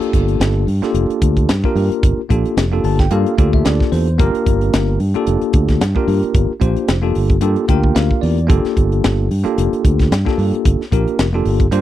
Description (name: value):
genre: electric jazz fusion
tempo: 112 BPM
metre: 4/4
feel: swing 55% on 16ths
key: G minor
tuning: A4 = 438 Hz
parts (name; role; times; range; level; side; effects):
- bell-like tine electric piano; accompaniment; 0.0-11.8 s; Bb3 to A5; -18 LUFS; left 1 dB; medium stereo tremolo
- fingered electric bass; bass; 0.0-11.8 s; F1 to G2; -16 LUFS; equal; none
- tight funk drum kit; drums; 0.0-11.8 s; hi-hat, kick drum, snare drum; -16 LUFS; equal; none
room: little or no reverb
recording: dry, close 1970s-style studio recording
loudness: -13 LUFS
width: side -13 dB against mid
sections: 0.0-11.8 A section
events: tine electric piano fill 2.6-4.2, 7.4-8.5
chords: 0.0 Gm9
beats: 0.40 0.94 1.49 | 2.03 2.57 3.11 3.65 | 4.19 4.73 5.26 5.80 | 6.34 6.88 7.42 7.96 | 8.49 9.03 9.56 10.10 | 10.64 11.17 11.71